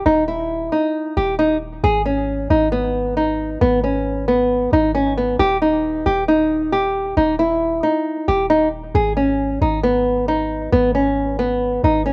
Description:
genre	hip hop, trap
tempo	135 BPM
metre	4/4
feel	half-time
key	G# harmonic minor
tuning	A4 = 440 Hz
part	nylon-string guitar	melody	0.0-12.1 s	B3 to G#4	-19 LUFS	equal	low-pass filter, cassette tape
part	clean 808-style bass	bass	0.1-12.1 s	D#1 to G#1	-27 LUFS	equal	none
room	light reverb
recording	home recording on cassette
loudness	-18 LUFS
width	mono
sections	0.0-12.1 A section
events	none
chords	0.0 N.C.; 1.8 G#m; 5.4 D#; 8.9 G#m

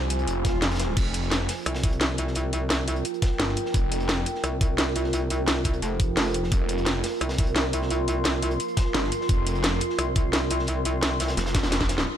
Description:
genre	dark technical drum and bass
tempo	173 BPM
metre	4/4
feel	straight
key	F minor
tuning	A4 = 439 Hz
part	deep dark ambient pad	sustained chords	0.0-12.2 s	F4 to C6	-30 LUFS	right 2 dB	chorus, built-in reverb, vintage 12-bit sampler grit, sidechain pumping
part	snarling distorted saw bass	bass	0.0-4.2, 6.5-12.1 s	F1 to C2	-28 LUFS	equal	distortion, tube saturation, sidechain pumping
part	crunchy breakbeat drum kit	drums	0.1-12.1 s	hi-hat, snare drum	-37 LUFS	equal	high-pass filter on hats, high-pass filter on snare, high-pass filter on room
part	drum and bass drum kit	drums	0.1-12.1 s	crash cymbal, hi-hat, snare drum	-27 LUFS	equal	low-pass filter on hats, low-pass filter on snare, low-pass filter on cymbals, low-pass filter on room
part	swell	sound effects	0.4-1.0 s	none	-34 LUFS	equal	none
part	electronic kick drum	drums	0.4-11.9 s	none	-24 LUFS	equal	none
part	metallic wobble bass	bass	1.7-11.4 s	F1 to C2	-27 LUFS	equal	chorus
room	light reverb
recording	none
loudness	-22 LUFS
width	side -10 dB against mid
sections	0.0-12.1 A section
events	swell 0.4-1.0; kick drops out 0.6-1.0; drum fill 11.5-12.1; band accent 12.0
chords	0.0 Fm

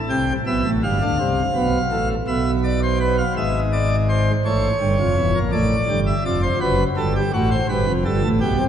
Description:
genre	classical, baroque-style 3-part fugue for pipe organ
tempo	55 BPM (dotted quarters)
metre	6/8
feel	straight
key	unclear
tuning	A4 = 444 Hz
part	pipe organ, plenum	solo	0.1-8.7 s	E1 to G5	-17 LUFS	equal	none
room	wet church reverb, RT60 2.9 s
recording	nothing above 10.4 kHz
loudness	-17 LUFS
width	side -9 dB against mid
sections	0.1-8.7 A section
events	none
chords	0.1 Cmaj7; 1.2 F; 2.3 Bdim; 3.4 E7/G#; 4.5 A7; 5.5 Dm; 6.6 B5/F#; 7.7 Fadd9

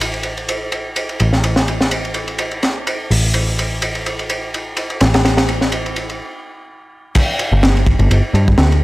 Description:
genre	breakbeat, breaks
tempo	126 BPM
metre	4/4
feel	swing 54% on 16ths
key	unclear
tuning	A4 = 440 Hz
part	overdriven picked electric bass	bass	0.0-8.8 s	G1 to G2	-16 LUFS	equal	tube saturation
part	crunchy breakbeat drum kit	drums	0.0-8.8 s	crash cymbal, hi-hat, kick drum, ride cymbal, snare drum	-17 LUFS	equal	high-pass filter on kick, high-pass filter on cymbals, high-pass filter on hats, high-pass filter on snare, high-pass filter on room
room	little or no reverb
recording	none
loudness	-14 LUFS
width	side -19 dB against mid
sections	0.0-7.2 A section; 7.2-8.8 B section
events	stop 6.2-7.2; drop 7.2-8.8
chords	none

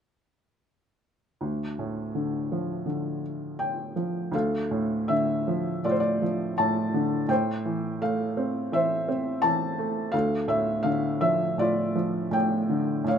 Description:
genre	classical, lyrical solo piano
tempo	82 BPM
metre	4/4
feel	rubato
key	D minor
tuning	A4 = 440 Hz
part	felt-muted upright piano	solo	1.4-13.2 s	D2 to A5	-24 LUFS	equal	none
room	light reverb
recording	none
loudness	-24 LUFS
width	side -8 dB against mid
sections	1.4-4.3 A section; 4.3-13.2 B section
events	none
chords	1.4 Dm; 7.3 Am; 10.1 Dm

